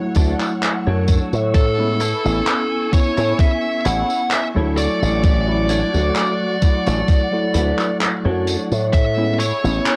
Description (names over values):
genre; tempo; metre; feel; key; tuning
vaporwave; 65 BPM; 4/4; swing 53% on 16ths; unclear; A4 = 438 Hz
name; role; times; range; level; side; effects
mellow tine electric piano; accompaniment; 0.0-10.0 s; F#3 to D5; -26 LUFS; equal; subtle chorus, analog delay
soft string machine; sustained chords; 0.0-10.0 s; F#5 to E6; -35 LUFS; equal; phaser, ensemble chorus
open jazz drum kit; drums; 0.1-10.0 s; handclaps, hi-hat, tambourine; -27 LUFS; equal; none
clean electric guitar; riff; 0.2-10.0 s; D4 to D5; -33 LUFS; equal; analog chorus, analog delay
slap bass with an envelope filter; bass; 0.2-9.8 s; A1 to A2; -21 LUFS; equal; none
electronic kick drum; drums; 0.2-9.1 s; none; -17 LUFS; equal; none
fuzz lead guitar; melody; 1.5-10.0 s; A4 to F#5; -25 LUFS; equal; distortion, tape echo
room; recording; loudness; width
small room ambience; dry, gritty hardware recording, transformer saturation, cassette tape; -18 LUFS; mono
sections
0.0-10.0 A section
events
none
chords
0.0 Dmaj7; 1.5 Amaj7; 4.8 Dmaj7; 8.9 Amaj7